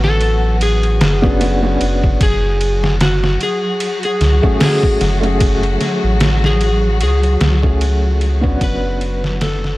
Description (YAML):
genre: trip hop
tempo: 75 BPM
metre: 4/4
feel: swing 57% on 16ths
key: F# minor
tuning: A4 = 438 Hz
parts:
  - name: electric slide guitar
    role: melody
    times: 0.0-9.8 s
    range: F#4 to B4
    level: -21 LUFS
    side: left 1 dB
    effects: tape echo
  - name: warm upright piano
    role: accompaniment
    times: 0.0-9.8 s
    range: A3 to G#4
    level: -21 LUFS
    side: equal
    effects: tremolo, vintage 12-bit sampler grit, tape echo
  - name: warm studio string section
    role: sustained chords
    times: 0.0-9.8 s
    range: F#3 to F#4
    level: -24 LUFS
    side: left 2 dB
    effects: none
  - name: round analog bass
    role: bass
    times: 0.0-9.8 s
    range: F#1 to C#2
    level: -16 LUFS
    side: equal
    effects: tube saturation
  - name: trip hop sampler-style drum kit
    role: drums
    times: 0.0-9.8 s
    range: hi-hat, kick drum, ride cymbal, snare drum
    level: -18 LUFS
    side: equal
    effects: none
room: little or no reverb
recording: dry, gritty hardware recording, transformer saturation, vinyl crackle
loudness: -13 LUFS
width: side -18 dB against mid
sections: 0.0-9.8 A section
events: fade-out 6.5-9.8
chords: 0.0 Bmadd9; 2.2 F#madd9